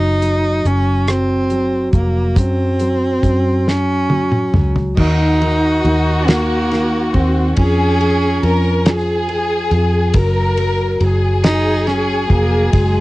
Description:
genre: six-eight pop ballad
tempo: 46 BPM (dotted quarters)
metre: 6/8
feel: straight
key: unclear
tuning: A4 = 442 Hz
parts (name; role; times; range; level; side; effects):
- rich cello; melody; 0.0-13.0 s; Ab3 to Eb4; -18 LUFS; right 1 dB; cassette tape
- warm upright piano; accompaniment; 0.0-13.0 s; Eb3 to Gb3; -22 LUFS; equal; cassette tape
- vintage muted fingered electric bass; bass; 0.0-13.0 s; F1 to Gb2; -17 LUFS; equal; none
- damped 70s drum kit; drums; 0.2-12.9 s; crash cymbal, hi-hat, kick drum, ride cymbal, rim click, snare drum, toms; -17 LUFS; equal; cassette tape
- warm studio violin section; second line; 5.0-13.0 s; Gb4 to Bb4; -19 LUFS; left 1 dB; cassette tape
room: light reverb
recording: home recording on cassette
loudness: -13 LUFS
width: side -19 dB against mid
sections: 0.0-5.0 A section; 5.0-13.0 B section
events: drum fill 3.7-5.0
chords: 0.0 Gb5; 5.0 Ebm; 7.6 Db/F; 10.1 Gbadd9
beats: 1.08 | 2.37 3.67 | 4.98 6.28 | 7.58 8.86 | 10.15 11.44 | 12.73

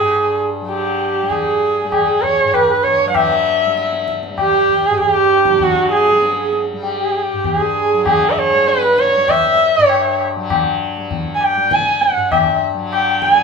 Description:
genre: indian classical, Hindustani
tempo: 98 BPM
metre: 5/4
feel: straight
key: G raga marwa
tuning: A4 = 439 Hz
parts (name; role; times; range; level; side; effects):
- warm sarangi; melody; 0.0-13.4 s; F#4 to Ab5; -14 LUFS; right 2 dB; none
- pedal harmonium; second line; 0.0-13.4 s; F#4 to Ab5; -23 LUFS; left 1 dB; none
- tanpura; drone; 0.0-13.4 s; G2 to G3; -25 LUFS; left 4 dB; none
- tabla; percussion; 0.1-13.4 s; none; -21 LUFS; left 6 dB; none
room: moderate small room reverb, RT60 0.5 s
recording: minimal, uncompressed stereo recording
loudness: -13 LUFS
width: side -5 dB against mid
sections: 0.0-13.4 A section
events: none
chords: none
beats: | 0.06 0.68 1.30 1.92 2.54 | 3.15 3.77 4.38 5.00 5.61 | 6.23 6.84 7.45 8.06 8.67 | 9.28 9.89 10.50 11.11 11.71 | 12.32 12.93

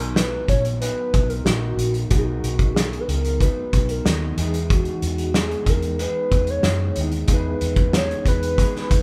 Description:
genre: indie pop, bedroom pop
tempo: 93 BPM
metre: 4/4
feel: straight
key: B major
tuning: A4 = 440 Hz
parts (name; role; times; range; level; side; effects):
- warbly nostalgic lead; melody; 0.0-9.0 s; F#4 to C#5; -28 LUFS; equal; chorus
- electric guitar through a small old amp; accompaniment; 0.0-9.0 s; B2 to A#4; -33 LUFS; equal; warbly pitch drift
- tine electric piano; accompaniment; 0.0-9.0 s; E3 to A#5; -36 LUFS; equal; none
- vintage muted fingered electric bass; bass; 0.0-9.0 s; A#1 to F#2; -27 LUFS; equal; none
- loose indie drum kit; drums; 0.2-9.0 s; hi-hat, kick drum, snare drum; -24 LUFS; equal; none
room: light reverb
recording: band playing live in one room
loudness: -21 LUFS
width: mono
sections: 0.0-9.0 A section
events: none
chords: 0.0 Bmaj7; 4.4 Emaj7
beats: 0.17 0.82 1.47 | 2.11 2.76 3.41 4.05 | 4.70 5.35 5.99 6.64 | 7.29 7.93 8.58

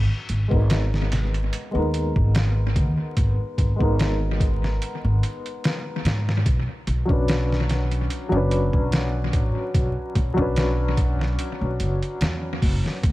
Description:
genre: trip hop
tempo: 73 BPM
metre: 4/4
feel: swing 54% on 16ths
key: unclear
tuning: A4 = 439 Hz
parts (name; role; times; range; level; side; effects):
- upright bass; bass; 0.0-13.1 s; F#1 to G#2; -23 LUFS; equal; none
- trip hop sampler-style drum kit; drums; 0.3-13.1 s; hi-hat, kick drum, snare drum; -24 LUFS; equal; vintage 12-bit sampler grit, small room reverb, analog delay
- bright upright piano; accompaniment; 0.5-13.0 s; F#3 to B4; -27 LUFS; left 1 dB; tremolo, low-pass filter, tape echo
room: small room ambience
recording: echo-heavy mix, vinyl crackle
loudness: -20 LUFS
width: side -17 dB against mid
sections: 0.0-13.1 A section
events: filter sweep on upright piano 0.0-13.1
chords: 0.0 G#madd9; 6.5 Bmadd9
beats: 0.70 1.53 2.35 | 3.17 3.99 4.81 5.64 | 6.46 7.28 8.10 8.92 | 9.75 10.57 11.39 12.21 | 13.03

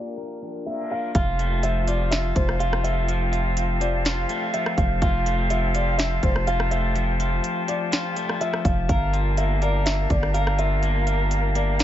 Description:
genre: hip hop, atmospheric cloud-rap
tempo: 124 BPM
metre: 4/4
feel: half-time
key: F major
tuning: A4 = 439 Hz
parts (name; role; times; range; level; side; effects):
- felt-muted upright piano; melody; 0.0-11.8 s; C5 to F5; -29 LUFS; left 1 dB; tape echo
- flute section; sustained chords; 0.0-11.8 s; C4 to A5; -28 LUFS; equal; sidechain pumping
- electric guitar at the edge of break-up; arpeggios; 0.0-11.8 s; F3 to Bb4; -30 LUFS; left 3 dB; tape echo
- long sustained 808-style bass; bass; 1.1-11.8 s; F1 to G1; -24 LUFS; equal; none
- trap drum kit; drums; 1.1-11.8 s; hi-hat, kick drum, rim click, snare drum; -25 LUFS; equal; none
room: little or no reverb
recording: low-pass filter, nothing above 7.6 kHz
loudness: -20 LUFS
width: side -12 dB against mid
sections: 0.0-1.1 A section; 1.1-11.8 B section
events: filter sweep 0.0-1.1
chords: 0.0 Bb6; 1.1 Fadd9; 8.9 Gm9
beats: 0.18 0.67 | 1.15 1.63 2.12 2.60 | 3.08 3.57 4.05 4.54 | 5.02 5.50 5.99 6.47 | 6.96 7.44 7.92 8.41 | 8.89 9.38 9.86 10.34 | 10.83 11.31 11.79

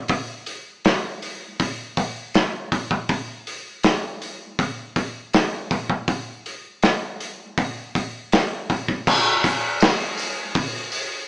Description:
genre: rock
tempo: 80 BPM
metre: 4/4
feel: straight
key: none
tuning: none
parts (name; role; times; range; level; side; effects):
- loose indie drum kit; drums; 0.1-11.1 s; crash cymbal, hi-hat, kick drum, snare drum; -20 LUFS; equal; none
- tambourine; percussion; 9.1-11.1 s; none; -32 LUFS; right 1 dB; none
room: light reverb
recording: small speaker sound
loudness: -20 LUFS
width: side -23 dB against mid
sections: 0.0-9.1 A section; 9.1-11.3 B section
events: none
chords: none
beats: | 0.09 0.84 1.59 2.35 | 3.09 3.84 4.59 5.34 | 6.09 6.83 7.58 8.32 | 9.07 9.81 10.55

